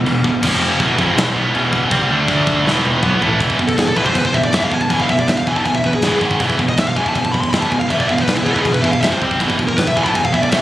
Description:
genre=heavy metal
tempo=160 BPM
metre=4/4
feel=straight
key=E phrygian dominant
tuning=A4 = 440 Hz
part: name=tight distorted guitar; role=riff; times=0.0-10.6 s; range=E2 to D4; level=-18 LUFS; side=right 4 dB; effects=distortion
part: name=growling picked electric bass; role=bass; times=0.0-10.6 s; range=E1 to D2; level=-23 LUFS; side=equal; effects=overdrive
part: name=scooped high-gain guitar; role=riff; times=0.1-10.6 s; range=E2 to D4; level=-22 LUFS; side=left 6 dB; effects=distortion
part: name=big rock drum kit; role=drums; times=0.1-10.6 s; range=china cymbal, crash cymbal, kick drum, snare drum, toms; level=-19 LUFS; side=equal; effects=none
part: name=dark smooth lead guitar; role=melody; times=3.7-10.6 s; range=E4 to C6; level=-19 LUFS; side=left 1 dB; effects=overdrive
room=small room ambience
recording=recorded on a phone in the room, studio reverb, compression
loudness=-13 LUFS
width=side -14 dB against mid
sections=0.0-3.4 A section; 3.4-10.6 B section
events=half time 0.0-3.4; drum fill 2.7-3.4; lead electric guitar solo 3.4-10.6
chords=0.4 F5; 0.8 E5; 2.1 D5; 2.7 E5; 6.2 G#5; 6.4 E5; 9.0 F5; 9.2 C5; 9.4 E5

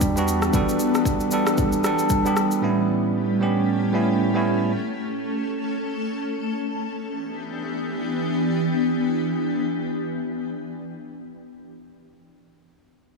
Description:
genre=amapiano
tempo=115 BPM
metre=4/4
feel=swing 58% on 16ths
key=E dorian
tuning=A4 = 443 Hz
part: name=bell-like tine electric piano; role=accompaniment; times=0.0-4.7 s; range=A2 to A4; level=-22 LUFS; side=right 2 dB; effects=none
part: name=granular cloud pad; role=sustained chords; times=0.0-11.4 s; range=E3 to A4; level=-24 LUFS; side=left 1 dB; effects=built-in reverb, sidechain pumping
part: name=punchy sub bass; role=bass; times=0.0-0.5 s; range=E2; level=-26 LUFS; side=right 1 dB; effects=none
part: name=deep house drum kit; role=drums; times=0.0-2.6 s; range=kick drum, rim click, shaker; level=-25 LUFS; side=left 1 dB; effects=none
room=moderate lush hall reverb, RT60 2.7 s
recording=small room reverb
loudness=-21 LUFS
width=side -3 dB against mid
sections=0.0-6.8 A section; 6.8-11.0 B section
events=none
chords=0.0 Em7; 2.6 A7; 6.8 Em7

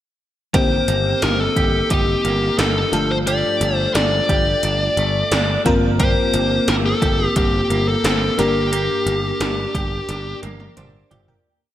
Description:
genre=1980s-style pop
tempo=88 BPM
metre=4/4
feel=straight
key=G minor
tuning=A4 = 441 Hz
part: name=smooth overdriven lead guitar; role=melody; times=0.5-10.4 s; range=G4 to D5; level=-20 LUFS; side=left 2 dB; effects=none
part: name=FM electric piano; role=accompaniment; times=0.5-11.6 s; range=G2 to G5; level=-23 LUFS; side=left 2 dB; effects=chorus
part: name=direct-recorded clean electric guitar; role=riff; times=0.5-11.7 s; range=Eb3 to G4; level=-27 LUFS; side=right 6 dB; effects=ensemble chorus
part: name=modern bright picked electric bass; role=bass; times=0.5-11.4 s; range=G1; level=-23 LUFS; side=equal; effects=none
part: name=80s electronic pad drums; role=drums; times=0.5-11.4 s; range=hi-hat, kick drum, snare drum, toms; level=-22 LUFS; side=equal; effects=gated reverb on snare and toms, gated reverb
room=moderate plate reverb, RT60 2.4 s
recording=bright 1980s-style digital production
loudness=-16 LUFS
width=side -12 dB against mid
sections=0.5-11.5 verse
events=fade-out 8.7-11.5; drum fill 10.1-11.5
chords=0.5 Cm7/G; 2.9 Dm/G; 5.7 Bbsus2/G; 8.4 Gm

